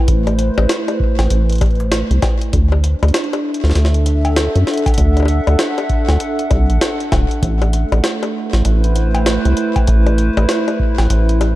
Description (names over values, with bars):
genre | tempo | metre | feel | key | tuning
IDM | 98 BPM | 4/4 | swing 62% on 16ths | unclear | A4 = 440 Hz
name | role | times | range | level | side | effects
hollow soft pad | sustained chords | 0.0-11.6 s | A3 to F#5 | -20 LUFS | equal | chorus
deep acid bass | bass | 0.1-11.6 s | D1 to F#2 | -14 LUFS | equal | none
electronic kick drum | drums | 0.1-10.9 s | none | -18 LUFS | equal | overdrive
jungle sampler-style drum kit | drums | 0.1-11.6 s | bongos, cowbell, hi-hat, snare drum | -21 LUFS | left 2 dB | digital delay
room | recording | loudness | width
light reverb | dark, warm production | -13 LUFS | side -16 dB against mid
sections
0.0-11.6 A section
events
none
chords
0.0 Am; 2.5 D; 7.4 Am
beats
| 0.08 0.69 1.31 1.92 | 2.53 3.14 3.75 4.37 | 4.98 5.59 6.20 6.82 | 7.43 8.04 8.65 9.27 | 9.88 10.49 11.10